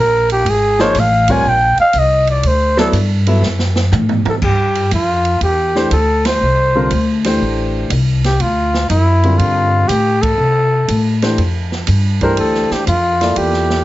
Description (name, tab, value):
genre	modal jazz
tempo	121 BPM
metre	4/4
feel	swing 68% on 8ths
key	G dorian from 4.4 s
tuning	A4 = 440 Hz
part	trumpet with bucket mute	melody	0.0-13.8 s	E4 to Ab5	-14 LUFS	equal	none
part	upright bass	bass	0.0-13.8 s	Ab1 to C3	-16 LUFS	equal	none
part	open jazz drum kit	drums	0.3-13.8 s	crash cymbal, hi-hat, kick drum, ride cymbal, snare drum, toms	-22 LUFS	right 3 dB	none
part	warm concert grand piano	accompaniment	0.8-13.8 s	D3 to E5	-18 LUFS	equal	none
room	light reverb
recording	heavily compressed radio sound, nothing above 7.7 kHz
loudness	-12 LUFS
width	side -16 dB against mid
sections	0.0-4.4 A section; 4.4-13.8 B section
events	muted trumpet solo 0.0-4.4; drum fill 3.4-4.4; band accent 6.2, 10.1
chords	0.0 Ebsus4 (rootless); 2.4 D69; 4.4 G9sus4